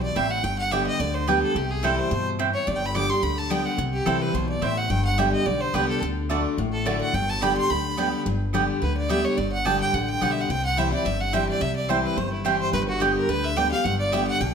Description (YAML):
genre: bluegrass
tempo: 215 BPM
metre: 4/4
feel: swing 54% on 8ths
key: G major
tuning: A4 = 440 Hz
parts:
  - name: clear fiddle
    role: melody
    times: 0.0-14.5 s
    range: E4 to D6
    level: -27 LUFS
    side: equal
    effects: none
  - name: picked steel-string acoustic guitar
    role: accompaniment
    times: 0.0-14.5 s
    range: G2 to G4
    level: -26 LUFS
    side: left 2 dB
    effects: none
  - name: upright bass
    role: bass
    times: 0.0-14.5 s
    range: G1 to G2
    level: -29 LUFS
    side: equal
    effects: none
  - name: mandolin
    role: stabs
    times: 0.2-14.2 s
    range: A3 to A5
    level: -28 LUFS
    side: right 6 dB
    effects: none
room: moderate large studio reverb, RT60 1.2 s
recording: none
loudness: -21 LUFS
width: side -6 dB against mid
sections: 0.0-8.3 A section; 8.3-14.5 B section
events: fiddle solo 8.3-14.5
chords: 0.4 G; 1.6 C; 2.7 G; 3.8 C; 4.9 G; 6.0 D; 7.1 G; 10.5 C; 12.7 G